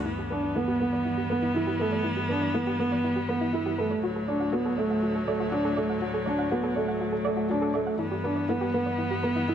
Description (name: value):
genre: electronica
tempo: 121 BPM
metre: 4/4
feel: straight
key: G major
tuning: A4 = 435 Hz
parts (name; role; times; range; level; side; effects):
- rich string quartet; sustained chords; 0.0-9.5 s; D2 to B3; -30 LUFS; left 1 dB; stereo widening
- soft round pluck; arpeggios; 0.0-9.5 s; E4 to F#5; -33 LUFS; equal; chorus, cassette tape, ping-pong delay
- felt-muted upright piano; riff; 0.3-9.5 s; A3 to E4; -27 LUFS; right 1 dB; low-pass filter, ping-pong delay
room: moderate lush hall reverb, RT60 1.9 s, small room ambience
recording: none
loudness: -25 LUFS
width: side -9 dB against mid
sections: 0.1-9.5 A section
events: filter sweep on felt piano 0.1-9.5; filter sweep on synth arpeggio sound 0.1-9.5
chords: 0.1 G6; 4.0 D; 8.0 G6